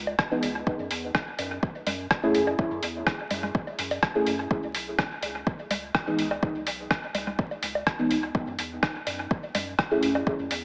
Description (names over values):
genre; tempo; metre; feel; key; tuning
dub techno; 125 BPM; 4/4; straight; unclear; A4 = 441 Hz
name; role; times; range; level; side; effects
soft dub sub bass; bass; 0.0-10.6 s; B1 to F#2; -42 LUFS; equal; sidechain pumping
woodblock and congas; percussion; 0.1-10.2 s; none; -38 LUFS; equal; sidechain pumping on perc, dub echo
electronic kick drum; drums; 0.2-10.4 s; none; -32 LUFS; equal; overdrive
lo-fi sampler-style drum kit; drums; 0.2-10.6 s; hi-hat, rim click; -32 LUFS; equal; overdrive, dub echo
deep mellow chord stab; stabs; 0.3-10.1 s; E3 to G#4; -31 LUFS; equal; chorus, phaser, sidechain pumping, dub echo
room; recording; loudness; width
wet spring reverb, RT60 2.0 s; echo-heavy mix, vinyl crackle, small speaker sound; -28 LUFS; mono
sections
0.0-10.6 A section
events
none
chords
0.0 C#m7; 0.7 F#m7; 4.5 C#m7; 8.3 F#m7